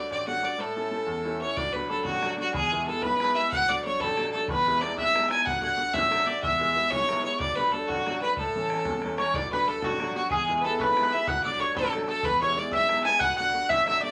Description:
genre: celtic folk, Celtic jig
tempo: 124 BPM (dotted quarters)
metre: 6/8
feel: straight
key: unclear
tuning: A4 = 440 Hz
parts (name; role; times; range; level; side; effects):
- bright fiddle; melody; 0.0-14.1 s; F#4 to A5; -28 LUFS; equal; none
- tin whistle; second line; 0.0-14.1 s; F#5 to G#6; -34 LUFS; equal; none
- bright upright piano; accompaniment; 0.0-14.1 s; A1 to F#4; -36 LUFS; equal; none
- bodhran; percussion; 1.6-13.9 s; none; -40 LUFS; equal; none
- mandolin; second line; 9.2-14.1 s; F#4 to G#5; -32 LUFS; equal; none
room: wet studio reverb, RT60 0.6 s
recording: none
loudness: -26 LUFS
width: mono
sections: 0.0-1.6 A section; 1.6-9.3 B section; 9.3-14.1 B section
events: none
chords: 0.0 D; 0.6 A; 1.6 D; 2.5 E; 3.5 D; 4.5 E; 5.5 D; 6.4 E; 7.4 D; 8.4 A; 9.3 D; 10.3 E; 11.3 D; 12.2 E; 13.2 D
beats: 0.10 | 0.59 1.07 | 1.56 2.05 | 2.54 3.03 | 3.51 4.00 | 4.49 4.97 | 5.46 5.95 | 6.43 6.92 | 7.40 7.89 | 8.37 8.86 | 9.34 9.83 | 10.31 10.79 | 11.28 11.76 | 12.25 12.73 | 13.21 13.70

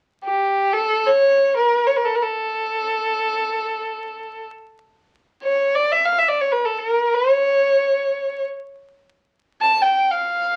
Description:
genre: persian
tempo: free time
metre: none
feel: none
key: A dastgah homayun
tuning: A4 = 440 Hz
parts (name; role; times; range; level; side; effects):
- clear violin; melody; 0.2-10.6 s; G4 to A5; -20 LUFS; equal; none
room: moderate small room ambience, RT60 0.5 s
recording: very old 78 rpm record, vinyl crackle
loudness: -20 LUFS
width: mono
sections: 0.0-10.6 A section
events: none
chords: none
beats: free time

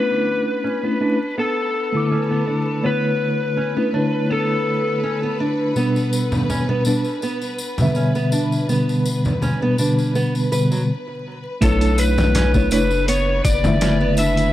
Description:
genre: trip hop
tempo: 82 BPM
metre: 4/4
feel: swing 53% on 16ths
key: B minor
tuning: A4 = 440 Hz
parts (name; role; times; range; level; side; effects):
- overdriven slide guitar; melody; 0.0-5.4, 11.6-14.5 s; A4 to E5; -23 LUFS; left 4 dB; tape echo
- mellow tine electric piano; accompaniment; 0.0-14.5 s; B2 to D6; -20 LUFS; equal; medium stereo tremolo
- warm studio string section; sustained chords; 0.0-14.5 s; B4; -30 LUFS; left 1 dB; none
- nylon-string guitar; arpeggios; 0.0-14.5 s; F#3 to B4; -26 LUFS; right 2 dB; vintage 12-bit sampler grit, low-pass filter, tape echo
- tambourine and congas; percussion; 5.8-14.5 s; none; -28 LUFS; left 1 dB; none
- round analog bass; bass; 11.6-14.5 s; F#1 to B1; -20 LUFS; equal; none
- boom bap sampler-style drum kit; drums; 11.6-14.5 s; hi-hat, kick drum, snare drum; -21 LUFS; equal; none
room: small room ambience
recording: dry, gritty hardware recording, vinyl crackle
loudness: -17 LUFS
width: side -13 dB against mid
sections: 0.0-11.6 A section; 11.6-14.5 B section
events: filter sweep on nylon-string guitar 0.0-11.6; break 10.9-11.6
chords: 0.0 Bm11; 5.8 G/B; 11.6 Bm11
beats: 0.64 1.37 2.10 | 2.84 3.57 4.30 5.03 | 5.76 6.50 7.23 7.96 | 8.69 9.42 10.15 10.89 | 11.62 12.35 13.08 13.81

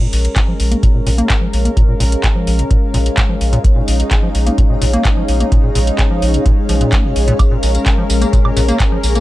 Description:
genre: acid house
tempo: 128 BPM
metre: 4/4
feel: straight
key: Bb minor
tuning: A4 = 438 Hz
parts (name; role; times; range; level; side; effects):
- warm analog pad; sustained chords; 0.0-9.2 s; Ab3 to Bb4; -21 LUFS; left 1 dB; chorus, sidechain pumping
- acid bass, square; riff; 0.0-9.2 s; Bb2 to Bb3; -20 LUFS; equal; cassette tape, sidechain pumping
- granular cloud pad; texture; 0.6-9.2 s; Ab4 to Ab5; -24 LUFS; left 1 dB; built-in reverb, sidechain pumping
- saturated sub bass; bass; 0.1-9.2 s; Bb1; -15 LUFS; equal; sidechain pumping
- electro analog drum machine; drums; 0.1-9.2 s; handclaps, hi-hat, tambourine, woodblock; -22 LUFS; equal; none
- electronic kick drum; drums; 0.4-8.9 s; none; -14 LUFS; equal; none
room: light reverb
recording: none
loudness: -12 LUFS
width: side -16 dB against mid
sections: 0.0-9.2 A section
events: filter sweep on acid bass 0.0-9.2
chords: 0.0 Bbm7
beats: 0.36 0.83 1.30 | 1.77 2.24 2.71 3.18 | 3.64 4.11 4.58 5.05 | 5.52 5.99 6.46 6.93 | 7.39 7.86 8.33 8.80

